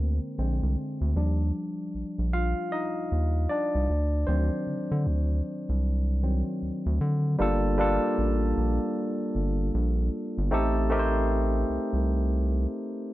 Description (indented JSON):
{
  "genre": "R&B, neo-soul",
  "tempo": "77 BPM",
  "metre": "4/4",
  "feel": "swing 62% on 16ths",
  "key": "G minor",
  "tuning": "A4 = 441 Hz",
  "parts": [
    { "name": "barky tine electric piano", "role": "accompaniment", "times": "0.0-13.1 s", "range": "D3 to F5", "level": "-28 LUFS", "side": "equal", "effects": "overdrive" },
    { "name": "round analog bass", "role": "bass", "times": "0.0-12.7 s", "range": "G1 to D3", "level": "-26 LUFS", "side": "equal", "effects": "none" }
  ],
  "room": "light reverb",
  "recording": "dark, warm production",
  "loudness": "-24 LUFS",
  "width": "side -16 dB against mid",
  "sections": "0.0-7.4 A section; 7.4-13.1 B section",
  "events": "tine electric piano solo 0.0-7.4",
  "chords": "0.0 Bb9; 1.2 Ebmaj7; 3.9 D7b9; 7.4 Gm9; 10.5 Am7b5"
}